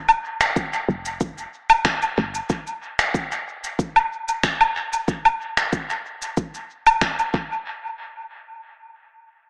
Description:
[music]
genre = organic downtempo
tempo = 93 BPM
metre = 4/4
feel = swing 53% on 16ths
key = unclear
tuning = A4 = 444 Hz
[part]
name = woody FM bass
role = bass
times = 0.0-2.4 s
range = F1 to G1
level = -28 LUFS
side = equal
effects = none
[part]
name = electronic woodblock, cabasa and finger snaps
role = drums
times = 0.1-7.3 s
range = none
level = -23 LUFS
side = equal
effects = small room reverb, dub echo
[part]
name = electronic kick drum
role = drums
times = 0.6-7.5 s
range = none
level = -27 LUFS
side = equal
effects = small room reverb
[sound]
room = wet spring reverb, RT60 1.8 s, digital ambience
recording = echo-heavy mix, small speaker sound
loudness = -22 LUFS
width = mono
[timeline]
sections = 0.0-7.7 A section; 7.7-9.5 B section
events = none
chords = none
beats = 0.56 1.21 1.85 | 2.50 3.14 3.79 4.43 | 5.08 5.72 6.37 7.01

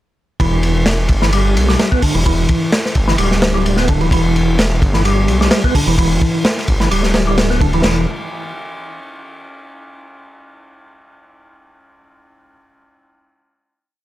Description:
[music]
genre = breakbeat, breaks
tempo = 129 BPM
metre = 4/4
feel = straight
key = E minor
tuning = A4 = 440 Hz
[part]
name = percussive tonewheel organ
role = riff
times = 0.4-8.1 s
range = D3 to B3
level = -18 LUFS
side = equal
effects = chorus vibrato, fast rotary speaker, tube saturation, digital delay
[part]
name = detuned saw bass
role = bass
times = 0.4-8.1 s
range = D1 to B1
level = -17 LUFS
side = equal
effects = none
[part]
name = crunchy breakbeat drum kit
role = drums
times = 0.4-8.0 s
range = crash cymbal, hi-hat, kick drum, ride cymbal, snare drum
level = -16 LUFS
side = equal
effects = none
[sound]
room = studio reverb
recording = none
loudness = -12 LUFS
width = side -14 dB against mid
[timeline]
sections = 0.4-7.8 drop; 7.8-9.7 final note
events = drop 0.4-7.8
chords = 0.4 Em; 7.8 N.C.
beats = | 0.40 0.87 1.33 1.80 | 2.26 2.73 3.19 3.66 | 4.12 4.59 5.05 5.52 | 5.98 6.45 6.91 7.38 | 7.84

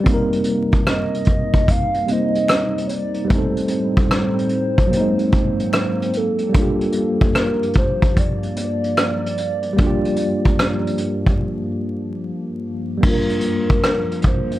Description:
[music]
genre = lo-fi hip hop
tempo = 74 BPM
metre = 4/4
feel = swing 64% on 16ths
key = G minor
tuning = A4 = 441 Hz
[part]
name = tine electric piano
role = accompaniment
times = 0.0-14.6 s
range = Gb3 to C5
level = -22 LUFS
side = equal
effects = overdrive, fast stereo tremolo, low-pass filter
[part]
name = hollow soft pad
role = sustained chords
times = 0.1-14.6 s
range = G2 to Eb4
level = -26 LUFS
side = left 1 dB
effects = chorus, low-pass filter
[part]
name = vintage brush drum kit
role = drums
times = 0.1-14.6 s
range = crash cymbal, hi-hat, kick drum, rim click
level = -18 LUFS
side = equal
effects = vintage 12-bit sampler grit
[part]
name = hollow clarinet-like synth lead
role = melody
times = 0.9-14.6 s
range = A4 to F5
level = -24 LUFS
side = equal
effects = chorus, phaser, low-pass filter
[part]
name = finger snap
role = percussion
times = 0.9-14.1 s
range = none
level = -35 LUFS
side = left 4 dB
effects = none
[sound]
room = light reverb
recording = dark, warm production, vinyl crackle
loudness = -16 LUFS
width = side -15 dB against mid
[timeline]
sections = 0.0-13.0 A section; 13.0-14.6 B section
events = break 11.4-13.0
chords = 0.1 Cm7; 3.3 Am7b5; 4.9 Ab9; 6.5 Gm7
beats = | 0.06 0.87 1.68 2.49 | 3.30 4.11 4.92 5.73 | 6.54 7.36 8.17 8.98 | 9.79 10.60 11.41 12.22 | 13.03 13.84

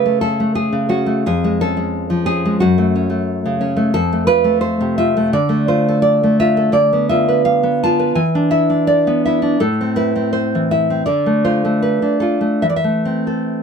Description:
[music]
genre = romantic piece for solo classical guitar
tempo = 70-91 BPM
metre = 4/4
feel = rubato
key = A minor from 3.9 s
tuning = A4 = 436 Hz
[part]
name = nylon-string guitar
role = solo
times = 0.0-13.6 s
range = E#2 to A5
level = -14 LUFS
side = equal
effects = none
[sound]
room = light reverb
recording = close, detailed microphones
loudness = -14 LUFS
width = side -6 dB against mid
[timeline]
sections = 0.0-13.6 A section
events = none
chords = 0.0 F#m; 1.2 C#/E#; 2.6 F#m; 3.9 F; 5.3 Dm; 6.8 Bdim/D; 8.2 E5; 9.6 Am; 11.1 Dm; 12.6 Am/E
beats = 0.57 | 1.25 1.92 2.60 3.27 | 3.94 4.64 5.33 6.04 | 6.75 7.47 8.19 8.90 | 9.61 10.34 11.06 11.82 | 12.63 13.49

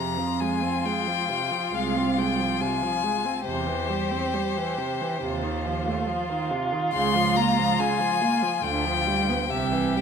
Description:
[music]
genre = classical, slow romantic movement for string quartet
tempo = 69 BPM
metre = 4/4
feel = rubato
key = F minor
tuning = A4 = 442 Hz
[part]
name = clear violin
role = melody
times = 0.0-10.0 s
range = C5 to C6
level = -27 LUFS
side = left 9 dB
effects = none
[part]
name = dark violin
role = second line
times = 0.0-10.0 s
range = F4 to G4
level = -30 LUFS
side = left 1 dB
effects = none
[part]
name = warm viola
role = accompaniment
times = 0.0-10.0 s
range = C3 to C4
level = -29 LUFS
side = right 3 dB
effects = none
[part]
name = warm cello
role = bass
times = 0.0-10.0 s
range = C2 to F2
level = -29 LUFS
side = right 5 dB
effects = none
[sound]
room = wet recital hall reverb, RT60 1.7 s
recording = minimal, uncompressed stereo recording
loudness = -23 LUFS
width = side -6 dB against mid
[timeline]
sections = 0.0-10.0 A section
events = none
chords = 0.0 Fm; 3.5 C/E; 5.2 F7/Eb; 6.9 Bbm/Db; 8.6 G7/D; 9.5 C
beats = 0.85 1.73 2.60 | 3.48 4.35 5.24 6.09 | 6.94 7.80 8.64 9.50

